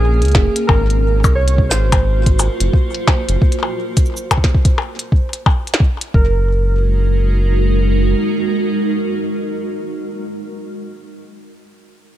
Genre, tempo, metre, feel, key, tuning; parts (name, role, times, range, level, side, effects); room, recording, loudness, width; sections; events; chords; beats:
IDM; 88 BPM; 4/4; swing 62% on 16ths; Gb lydian; A4 = 437 Hz
warbly lo-fi synth keys; melody; 0.0-10.1 s; Ab4 to Db5; -24 LUFS; right 2 dB; chorus, vintage 12-bit sampler grit, digital delay
granular cloud pad; sustained chords; 0.0-9.6 s; Ab3 to Bb4; -22 LUFS; right 1 dB; built-in reverb, vintage 12-bit sampler grit
round analog bass; bass; 0.0-8.1 s; F1 to Db2; -15 LUFS; equal
glitchy drum kit; drums; 0.2-6.1 s; hi-hat, percussion blips, shaker, snare drum; -20 LUFS; left 3 dB
electronic kick drum; drums; 0.3-6.3 s; -13 LUFS; equal
little or no reverb; dark, warm production; -13 LUFS; side -12 dB against mid
0.0-6.1 A section; 6.1-8.9 B section
0.0 Bbm7; 0.7 Ab13; 6.1 Gb69
0.01 | 0.69 1.37 2.05 2.73 | 3.42 4.10 4.78 5.46 | 6.14 6.83 7.51 8.19